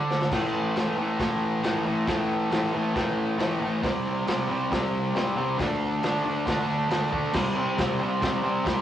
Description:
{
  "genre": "garage rock duo or trio",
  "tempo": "136 BPM",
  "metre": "4/4",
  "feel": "straight",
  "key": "unclear",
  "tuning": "A4 = 440 Hz",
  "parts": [
    { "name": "fuzz guitar", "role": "riff", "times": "0.0-8.8 s", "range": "A2 to D4", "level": "-24 LUFS", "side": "equal", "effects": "distortion" },
    { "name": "crunchy breakbeat drum kit", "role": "drums", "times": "0.1-8.8 s", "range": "crash cymbal, hi-hat, kick drum, snare drum", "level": "-30 LUFS", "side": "equal", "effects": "none" }
  ],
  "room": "wet studio reverb, RT60 0.6 s",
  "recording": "rough rehearsal-room recording, warm saturation, cassette tape",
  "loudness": "-23 LUFS",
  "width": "side -11 dB against mid",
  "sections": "0.3-7.3 A section; 7.3-8.8 B section",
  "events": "drum fill 0.0-0.3",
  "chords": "0.3 A5; 3.8 C5; 5.6 D5; 7.3 C5",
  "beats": "| 0.31 0.75 1.20 1.64 | 2.08 2.52 2.96 3.40 | 3.83 4.28 4.71 5.15 | 5.59 6.03 6.47 6.91 | 7.35 7.79 8.23 8.66"
}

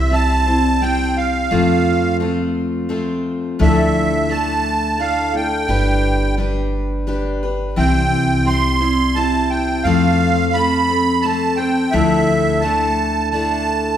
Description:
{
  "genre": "acoustic folk duo or small band",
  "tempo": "86 BPM",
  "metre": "3/4",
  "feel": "straight",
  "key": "C major",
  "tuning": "A4 = 439 Hz",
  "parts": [
    { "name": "musette accordion", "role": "melody", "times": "0.0-14.0 s", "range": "E5 to C6", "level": "-19 LUFS", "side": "right 3 dB", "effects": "none" },
    { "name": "picked steel-string acoustic guitar", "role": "accompaniment", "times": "0.0-14.0 s", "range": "C3 to C5", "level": "-18 LUFS", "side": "left 2 dB", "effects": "none" },
    { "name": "upright bass", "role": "bass", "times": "0.0-14.0 s", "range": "G1 to F2", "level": "-22 LUFS", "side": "equal", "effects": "none" }
  ],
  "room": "wet recital hall reverb, RT60 1.5 s",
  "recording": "recorded in a church or concert hall",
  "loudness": "-15 LUFS",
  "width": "side -10 dB against mid",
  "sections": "0.0-14.0 A section",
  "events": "none",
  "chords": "0.0 C; 1.5 F; 3.6 Dmadd9; 5.7 G; 7.8 C; 9.9 F; 11.9 Dmadd9",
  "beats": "0.12 0.81 | 1.51 2.21 2.90 | 3.60 4.29 4.99 | 5.68 6.38 7.07 | 7.77 8.46 9.16 | 9.85 10.55 11.24 | 11.94 12.63 13.33"
}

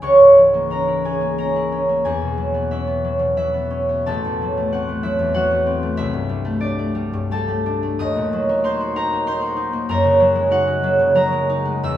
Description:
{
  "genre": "classical, solo harp piece",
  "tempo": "83-98 BPM",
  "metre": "3/4",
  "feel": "rubato",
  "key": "unclear",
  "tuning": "A4 = 440 Hz",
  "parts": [
    { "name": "concert harp", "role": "solo", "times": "0.0-12.0 s", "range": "A1 to E6", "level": "-16 LUFS", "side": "equal", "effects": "none" }
  ],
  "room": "wet stone room reverb, RT60 1.3 s",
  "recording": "heard from further back in the room",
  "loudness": "-16 LUFS",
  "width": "side -12 dB against mid",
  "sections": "0.0-12.0 A section",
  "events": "none",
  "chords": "0.0 C#m6; 2.1 E69; 4.1 Am6; 6.0 C69; 8.0 D#m6; 9.9 F#69",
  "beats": "| 0.03 0.72 1.39 | 2.05 2.71 3.36 | 4.06 4.73 5.36 | 6.00 6.63 7.32 | 8.01 8.65 9.27 | 9.89 10.51 11.15 | 11.83"
}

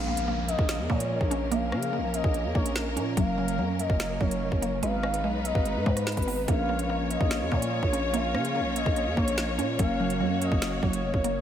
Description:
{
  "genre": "hip hop, drill",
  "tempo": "145 BPM",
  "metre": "4/4",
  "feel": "half-time",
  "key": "Bb phrygian",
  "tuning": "A4 = 440 Hz",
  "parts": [
    { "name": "gliding portamento lead", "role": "second line", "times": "0.0-11.4 s", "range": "Cb5 to F5", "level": "-32 LUFS", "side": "left 2 dB", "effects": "chorus, diffuse ambient delay" },
    { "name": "warm symphonic string section", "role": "sustained chords", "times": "0.0-11.4 s", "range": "F3 to Db5", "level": "-33 LUFS", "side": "equal", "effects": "none" },
    { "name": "mallet-like synth pluck", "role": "arpeggios", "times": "0.0-11.4 s", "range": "Gb3 to Db4", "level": "-32 LUFS", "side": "right 2 dB", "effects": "chorus, phaser, diffuse ambient delay" },
    { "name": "growling 808-style bass", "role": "bass", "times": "0.0-11.4 s", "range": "F1 to Db3", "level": "-32 LUFS", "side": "right 1 dB", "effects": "none" },
    { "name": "downlifter", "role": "sound effects", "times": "0.0-3.2 s", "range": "none", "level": "-40 LUFS", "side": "equal", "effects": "none" },
    { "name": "drill drum kit", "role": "drums", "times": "0.2-11.3 s", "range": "finger snaps, hi-hat, kick drum, rim click, snare drum", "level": "-30 LUFS", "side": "right 1 dB", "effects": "none" },
    { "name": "mellow tine electric piano", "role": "accompaniment", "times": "6.5-11.4 s", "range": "F3 to Bb4", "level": "-36 LUFS", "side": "left 4 dB", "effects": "lush chorus" }
  ],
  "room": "moderate cathedral reverb, RT60 7.2 s",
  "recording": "dreamy mix soaked in reverb",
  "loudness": "-24 LUFS",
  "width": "side -10 dB against mid",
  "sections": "0.0-11.4 A section",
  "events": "none",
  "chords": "0.0 Bbm; 3.2 Gb; 4.8 Abm; 6.5 Bbm; 9.8 Gb",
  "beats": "0.28 0.69 1.10 | 1.52 1.93 2.34 2.76 | 3.17 3.59 4.00 4.41 | 4.83 5.24 5.66 6.07 | 6.48 6.90 7.31 7.72 | 8.14 8.55 8.96 9.38 | 9.79 10.21 10.62 11.03"
}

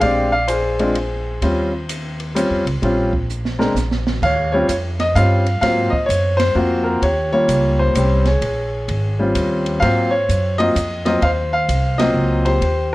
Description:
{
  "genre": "jazz piano trio",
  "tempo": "128 BPM",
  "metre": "3/4",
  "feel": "swing 65% on 8ths",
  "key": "Eb mixolydian",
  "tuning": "A4 = 440 Hz",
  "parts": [
    { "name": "warm baby grand piano", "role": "melody", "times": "0.0-12.9 s", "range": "Gb3 to F5", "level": "-17 LUFS", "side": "left 1 dB", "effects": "none" },
    { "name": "upright bass", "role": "bass", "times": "0.0-12.9 s", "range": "Ab1 to Ab2", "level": "-20 LUFS", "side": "equal", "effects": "none" },
    { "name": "open jazz drum kit", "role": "drums", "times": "0.0-12.8 s", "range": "crash cymbal, hi-hat, kick drum, ride cymbal, snare drum", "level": "-27 LUFS", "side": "right 2 dB", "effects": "none" }
  ],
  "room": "light reverb",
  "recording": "none",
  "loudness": "-15 LUFS",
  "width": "side -18 dB against mid",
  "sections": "0.0-4.2 A section; 4.2-12.9 A section",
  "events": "drum fill 3.3-4.2; band accent 6.3, 11.9",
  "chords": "0.0 Bb9; 1.4 Eb13; 3.8 N.C.; 4.2 Eb13; 5.6 Ab13; 7.0 Eb13; 8.4 Bbm7; 9.4 Eb13; 9.8 Ab13",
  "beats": "| 0.01 0.48 0.95 | 1.41 1.88 2.35 | 2.82 3.28 3.75 | 4.22 4.69 5.15 | 5.62 6.09 6.55 | 7.02 7.49 7.95 | 8.42 8.89 9.35 | 9.82 10.29 10.75 | 11.22 11.68 12.15 | 12.61"
}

